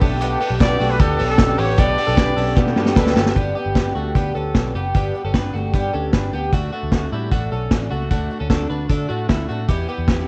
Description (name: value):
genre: jangly indie pop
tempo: 152 BPM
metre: 4/4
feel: straight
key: unclear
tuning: A4 = 440 Hz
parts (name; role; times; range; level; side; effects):
- chorused retro synth keys; accompaniment; 0.0-3.4 s; B3 to B4; -29 LUFS; equal; none
- picked twelve-string acoustic guitar; accompaniment; 0.0-10.3 s; E2 to G4; -29 LUFS; equal; plate reverb
- hollow soft pad; sustained chords; 0.0-3.3 s; B4 to D6; -33 LUFS; equal; none
- twelve-string electric guitar; arpeggios; 0.0-10.3 s; G3 to B4; -28 LUFS; equal; plate reverb
- vintage muted picked electric bass; bass; 0.0-10.2 s; F#1 to D3; -26 LUFS; equal; none
- vintage drum kit; drums; 0.0-10.2 s; hi-hat, kick drum, ride cymbal, snare drum; -21 LUFS; equal; vintage 12-bit sampler grit
- clear trumpet; melody; 0.6-3.0 s; A4 to D5; -26 LUFS; equal; analog delay, plate reverb
room: light reverb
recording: worn, warbling old tape, cassette tape, warbly pitch drift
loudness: -19 LUFS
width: mono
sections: 0.0-3.4 A section; 3.4-10.3 B section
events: drum fill 2.6-3.4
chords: 0.0 Gadd9; 3.4 G; 6.5 D; 9.7 Em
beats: | 0.21 0.61 1.00 1.39 | 1.78 2.18 2.57 2.97 | 3.36 3.75 4.15 4.55 | 4.94 5.34 5.73 6.13 | 6.53 6.92 7.32 7.71 | 8.11 8.50 8.90 9.29 | 9.69 10.08